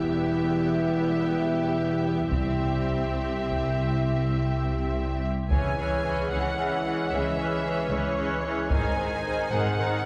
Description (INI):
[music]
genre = cinematic, epic orchestral film score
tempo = 75 BPM (dotted quarters)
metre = 6/8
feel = straight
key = C# harmonic minor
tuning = A4 = 440 Hz
[part]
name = rich studio violin section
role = melody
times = 0.0-10.1 s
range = C#5 to G#5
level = -35 LUFS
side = equal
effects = none
[part]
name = warm symphonic violin section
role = second line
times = 0.0-10.0 s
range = G4 to C#5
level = -36 LUFS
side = equal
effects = none
[part]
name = rich symphonic viola section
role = accompaniment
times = 0.0-10.0 s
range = D#3 to D#4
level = -34 LUFS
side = equal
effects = none
[part]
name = mellow French horn section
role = sustained chords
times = 0.0-10.1 s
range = G3 to E4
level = -33 LUFS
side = equal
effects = none
[part]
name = warm chamber cello section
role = bass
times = 0.0-10.1 s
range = C2 to C#3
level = -36 LUFS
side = equal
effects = none
[part]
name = warm symphonic double bass section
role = bass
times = 0.0-10.1 s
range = E1 to C#2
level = -33 LUFS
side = equal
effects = none
[part]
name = taiko ensemble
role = drums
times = 2.3-9.7 s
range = none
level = -33 LUFS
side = equal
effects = none
[sound]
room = wet concert hall reverb, RT60 1.9 s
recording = heard from further back in the room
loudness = -26 LUFS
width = mono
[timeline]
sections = 0.0-5.5 A section; 5.5-10.1 B section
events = build-up 0.0-5.5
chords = 0.0 Em; 2.3 C; 5.5 C#m; 8.7 G#